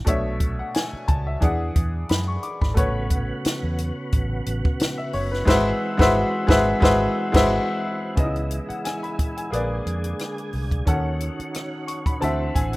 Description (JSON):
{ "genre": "lush 1970s-style soul", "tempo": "89 BPM", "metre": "4/4", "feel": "swing 54% on 16ths", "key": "C# minor", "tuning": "A4 = 438 Hz", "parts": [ { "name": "bright baby grand piano", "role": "accompaniment", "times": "0.0-12.8 s", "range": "B2 to D6", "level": "-24 LUFS", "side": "left 1 dB", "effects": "none" }, { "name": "vintage muted fingered electric bass", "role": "bass", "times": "0.1-12.8 s", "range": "F#1 to F#2", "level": "-26 LUFS", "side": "equal", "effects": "none" }, { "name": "compact cocktail drum kit", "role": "drums", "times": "0.1-12.8 s", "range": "crash cymbal, hi-hat, kick drum, rim click, snare drum", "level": "-22 LUFS", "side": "equal", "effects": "none" }, { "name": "tonewheel organ", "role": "sustained chords", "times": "2.8-12.8 s", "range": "C#3 to G#4", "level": "-31 LUFS", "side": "right 1 dB", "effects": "fast rotary speaker, chorus vibrato" } ], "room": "small room ambience", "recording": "rough home demo mix", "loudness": "-20 LUFS", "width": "side -20 dB against mid", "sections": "0.0-8.2 A section; 8.2-12.8 B section", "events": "band accent 5.5-8.2; grand piano fill 11.5-12.8", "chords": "0.1 Bm11; 1.4 E9; 2.8 A69; 5.5 G#7alt; 8.2 C#m9; 9.5 A#7b9; 10.9 D#m7b5; 12.2 D9" }